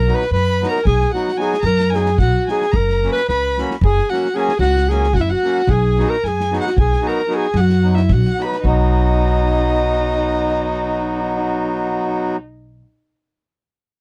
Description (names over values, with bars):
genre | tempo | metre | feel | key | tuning
balkan folk, Balkan wedding band | 223 BPM (eighths) | 11/8 | straight | B major | A4 = 438 Hz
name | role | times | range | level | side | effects
clear alto saxophone | melody | 0.0-12.4 s | E4 to D#5 | -22 LUFS | equal | none
warm violin | second line | 0.0-12.4 s | D#4 to B5 | -28 LUFS | equal | none
upright bass | bass | 0.0-12.8 s | F#1 to F#2 | -20 LUFS | equal | transformer saturation
accordion | accompaniment | 0.1-12.4 s | F#3 to F#4 | -23 LUFS | equal | none
unplugged drum kit | percussion | 0.1-8.9 s | kick drum, snare drum | -24 LUFS | equal | none
room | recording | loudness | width
little or no reverb | dry, close 1970s-style studio recording | -17 LUFS | mono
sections
0.0-8.7 A section; 8.7-11.6 B section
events
none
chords
0.0 B; 2.7 F#; 5.7 B